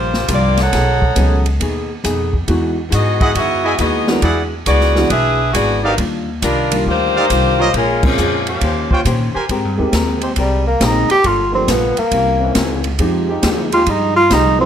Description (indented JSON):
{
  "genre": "jazz, big band swing",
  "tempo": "137 BPM",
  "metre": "4/4",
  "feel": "swing 67% on 8ths",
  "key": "Ab major from 9.5 s",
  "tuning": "A4 = 439 Hz",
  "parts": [
    { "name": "clear saxophone section", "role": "melody", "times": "0.0-9.0 s", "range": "F3 to Gb5", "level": "-17 LUFS", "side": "left 1 dB", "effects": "none" },
    { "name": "archtop guitar, miked and amplified", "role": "accompaniment", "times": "0.0-14.6 s", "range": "G2 to C5", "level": "-23 LUFS", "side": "left 3 dB", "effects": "none" },
    { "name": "upright bass", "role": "bass", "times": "0.0-14.7 s", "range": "G1 to Bb2", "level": "-19 LUFS", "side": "equal", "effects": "none" },
    { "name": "swinging big-band drum kit", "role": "drums", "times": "0.1-14.4 s", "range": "crash cymbal, hi-hat, kick drum, ride cymbal, snare drum", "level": "-22 LUFS", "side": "equal", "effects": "none" },
    { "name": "dark upright piano", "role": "accompaniment", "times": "1.2-14.7 s", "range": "Eb3 to G#4", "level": "-20 LUFS", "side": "right 2 dB", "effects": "none" },
    { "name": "warm trumpet section", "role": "stabs", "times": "3.2-9.4 s", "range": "Eb4 to G#5", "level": "-20 LUFS", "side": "right 1 dB", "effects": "none" },
    { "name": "clear trombone section", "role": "sustained chords", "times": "9.8-13.8 s", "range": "E3 to C5", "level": "-24 LUFS", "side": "equal", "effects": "none" },
    { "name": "breathy tenor saxophone", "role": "melody", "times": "10.4-14.7 s", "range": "G3 to G4", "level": "-14 LUFS", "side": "right 1 dB", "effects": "none" }
  ],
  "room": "light reverb",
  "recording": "none",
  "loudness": "-13 LUFS",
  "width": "side -9 dB against mid",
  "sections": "0.0-9.5 A section; 9.5-14.7 B section",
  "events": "band accent 8.0; tenor saxophone solo 9.5-14.7",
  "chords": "0.0 Gm7; 0.7 B13; 2.5 Emaj9; 4.2 E9; 6.0 Ebmaj9; 7.7 Bbm7; 8.6 Eb13; 9.5 Abmaj9; 11.2 Gm9; 12.1 C7b9; 13.0 Fm9"
}